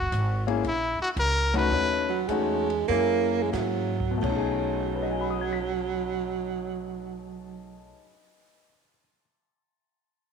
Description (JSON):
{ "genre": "jazz, small-group swing and bop", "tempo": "83-118 BPM", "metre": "4/4", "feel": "swing 68% on 8ths", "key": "B major", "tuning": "A4 = 440 Hz", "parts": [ { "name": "brilliant trumpet", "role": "melody", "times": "0.0-2.3 s", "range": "E4 to B4", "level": "-27 LUFS", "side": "left 2 dB", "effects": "none" }, { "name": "upright bass", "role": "bass", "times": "0.0-7.9 s", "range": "F#1 to G#2", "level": "-32 LUFS", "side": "right 1 dB", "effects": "none" }, { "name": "open jazz drum kit", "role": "drums", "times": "0.1-4.5 s", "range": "crash cymbal, hi-hat, kick drum, ride cymbal, snare drum", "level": "-38 LUFS", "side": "right 1 dB", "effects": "none" }, { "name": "warm concert grand piano", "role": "accompaniment", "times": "0.5-9.2 s", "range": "B2 to B6", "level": "-30 LUFS", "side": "left 8 dB", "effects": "none" }, { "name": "warm baritone saxophone", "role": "second line", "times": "2.1-7.9 s", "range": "F#3 to A#3", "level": "-28 LUFS", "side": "right 10 dB", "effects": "none" } ], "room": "moderate echo chamber reverb, RT60 1.4 s", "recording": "1960s-style stereo with parts hard left and right", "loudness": "-24 LUFS", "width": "side -6 dB against mid", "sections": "0.0-4.2 A section; 4.2-10.0 B section", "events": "slowing down 0.0-4.2; band accent 1.4", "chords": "0.0 F#add9; 1.7 B9; 2.9 F#9; 4.2 B13" }